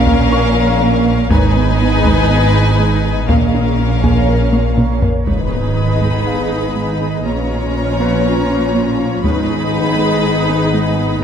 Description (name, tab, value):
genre	cinematic, hybrid orchestral and electronic film score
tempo	121 BPM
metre	4/4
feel	straight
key	G# dorian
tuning	A4 = 444 Hz
part	rich symphonic violin section	melody	0.0-5.0 s	E#5 to G#5	-22 LUFS	left 6 dB	none
part	clear symphonic violin section	second line	0.0-11.2 s	A#4 to B5	-22 LUFS	left 5 dB	none
part	warm symphonic viola section	accompaniment	0.0-11.2 s	C#4 to G#4	-23 LUFS	right 2 dB	none
part	airy breathy pad	sustained chords	0.0-11.2 s	D#3 to D#5	-20 LUFS	left 1 dB	chorus, phaser
part	pure sine sub bass	bass	0.0-5.3 s	G#1 to A#1	-20 LUFS	left 1 dB	none
part	rich symphonic cello section	bass	0.0-11.2 s	G#2 to A#2	-20 LUFS	right 2 dB	none
part	rich symphonic double bass section	bass	0.0-11.2 s	G#1 to A#1	-21 LUFS	right 3 dB	none
part	warm grand piano	texture	0.0-11.2 s	B3 to C#6	-30 LUFS	left 4 dB	digital delay
part	soft round pluck	arpeggios	0.1-11.1 s	G#3 to A#4	-22 LUFS	right 4 dB	chorus, digital delay
part	solo taiko drums	drums	0.1-6.2, 9.2-10.2 s	none	-18 LUFS	left 1 dB	none
part	dark French horn section	sustained chords	5.3-11.2 s	E#3 to B4	-23 LUFS	left 4 dB	none
part	impact	sound effects	5.3-7.3 s	none	-24 LUFS	equal	none
room	moderate scoring stage reverb, RT60 1.6 s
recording	none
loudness	-12 LUFS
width	side -8 dB against mid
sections	0.0-5.3 A section; 5.3-11.2 B section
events	drum fill 4.5-5.3; impact 5.3-7.3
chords	0.0 A#m; 1.3 G#m; 3.3 A#m; 5.3 G#m; 7.3 A#m; 9.2 G#m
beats	0.32 0.81 | 1.31 1.81 2.30 2.80 | 3.29 3.79 4.29 4.78 | 5.28 5.77 6.27 6.76 | 7.26 7.76 8.25 8.75 | 9.24 9.74 10.24 10.73 | 11.23